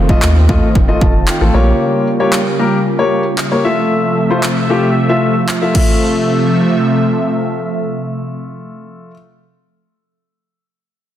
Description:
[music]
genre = dance-pop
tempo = 114 BPM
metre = 4/4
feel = straight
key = F major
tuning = A4 = 440 Hz
[part]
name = filtered supersaw swell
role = sustained chords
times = 0.0-9.1 s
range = C3 to E5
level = -16 LUFS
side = right 1 dB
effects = sidechain pumping
[part]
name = warm sub bass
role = bass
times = 0.0-1.7 s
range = F1 to Eb2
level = -13 LUFS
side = equal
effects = sidechain pumping
[part]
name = downlifter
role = sound effects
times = 0.0-1.8 s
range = none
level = -38 LUFS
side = equal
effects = none
[part]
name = warm concert grand piano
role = accompaniment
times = 0.1-9.1 s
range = A3 to A5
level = -17 LUFS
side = left 3 dB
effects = sidechain pumping
[part]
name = punchy analog drum machine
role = drums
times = 0.1-5.9 s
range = crash cymbal, handclaps, kick drum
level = -16 LUFS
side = equal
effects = none
[sound]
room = moderate lush hall reverb, RT60 1.8 s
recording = dense, heavily limited modern master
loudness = -11 LUFS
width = side -11 dB against mid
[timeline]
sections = 0.0-6.0 A section; 6.0-10.2 B section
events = grand piano fill 0.7-1.8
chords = 0.0 F7; 1.5 Bbm6; 3.6 Fmaj7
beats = 0.22 0.75 1.28 | 1.80 2.33 2.85 3.38 | 3.91 4.43 4.96 5.49 | 6.01 6.54 7.07 7.59 | 8.12 8.64

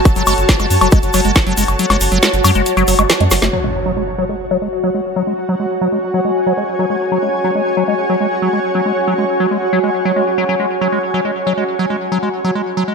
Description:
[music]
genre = psychedelic trance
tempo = 138 BPM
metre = 4/4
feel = straight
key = F# minor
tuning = A4 = 440 Hz
[part]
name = granular cloud pad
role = texture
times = 0.0-12.9 s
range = F#4 to A5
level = -17 LUFS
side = equal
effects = built-in reverb, sidechain pumping
[part]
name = electronic kick drum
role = drums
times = 0.1-1.4 s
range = none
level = -10 LUFS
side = equal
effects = none
[part]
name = garage drum kit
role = drums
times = 0.1-3.5 s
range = hi-hat, snare drum, woodblock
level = -16 LUFS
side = left 2 dB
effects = none
[part]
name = egg shaker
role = percussion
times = 0.1-3.5 s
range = none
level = -26 LUFS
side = right 3 dB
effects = none
[part]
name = liquid acid bass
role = riff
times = 0.2-12.9 s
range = E3 to A3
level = -18 LUFS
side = moving between left 5 dB and right 4 dB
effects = phaser, auto-pan, sidechain pumping, tape echo
[part]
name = round analog bass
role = bass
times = 0.2-3.5 s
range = F#1 to F#2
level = -17 LUFS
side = equal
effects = tube saturation
[part]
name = impact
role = sound effects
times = 3.5-5.3 s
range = none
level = -25 LUFS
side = equal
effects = none
[sound]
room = moderate digital room reverb, RT60 1.2 s, digital ambience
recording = none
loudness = -13 LUFS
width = side -5 dB against mid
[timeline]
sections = 0.0-3.5 A section; 3.5-12.9 B section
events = drop 0.0-3.5; kick drops out 1.8-3.5; drum fill 3.3; impact 3.5-5.3; filter sweep on acid bass 3.5-12.9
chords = 0.0 F#5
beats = | 0.05 0.49 0.92 1.36 | 1.79 2.23 2.66 3.10 | 3.53 3.97 4.40 4.84 | 5.27 5.71 6.14 6.58 | 7.01 7.44 7.88 8.31 | 8.75 9.18 9.62 10.05 | 10.49 10.92 11.36 11.79 | 12.23 12.66

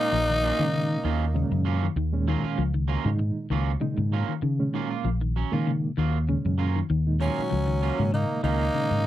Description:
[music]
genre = afrobeat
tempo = 98 BPM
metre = 4/4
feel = swing 54% on 16ths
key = Eb minor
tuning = A4 = 440 Hz
[part]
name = raspy tenor saxophone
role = melody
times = 0.0-1.6, 7.2-9.1 s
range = Db4 to Eb4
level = -27 LUFS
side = left 2 dB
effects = none
[part]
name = brilliant trombone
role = second line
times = 0.0-1.6, 7.2-9.1 s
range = Gb3 to Bb3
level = -32 LUFS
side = right 6 dB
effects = none
[part]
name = mellow reed electric piano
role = accompaniment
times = 0.0-9.1 s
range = Bb2 to Eb4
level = -31 LUFS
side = right 3 dB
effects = fast tremolo
[part]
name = clean electric guitar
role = arpeggios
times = 0.0-9.1 s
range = Db3 to F3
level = -31 LUFS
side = left 7 dB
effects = analog chorus
[part]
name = electric guitar at the edge of break-up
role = stabs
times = 0.0-8.6 s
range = Gb3 to F4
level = -32 LUFS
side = right 11 dB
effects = none
[part]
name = fingered electric bass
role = bass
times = 0.1-9.1 s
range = Bb1 to Eb3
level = -25 LUFS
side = equal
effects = none
[sound]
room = little or no reverb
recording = dry, close 1970s-style studio recording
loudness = -23 LUFS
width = side -13 dB against mid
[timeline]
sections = 0.0-9.1 A section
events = none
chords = 0.0 Ebm9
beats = 0.13 0.74 1.36 | 1.97 2.59 3.20 3.82 | 4.43 5.05 5.67 6.28 | 6.90 7.51 8.13 8.74

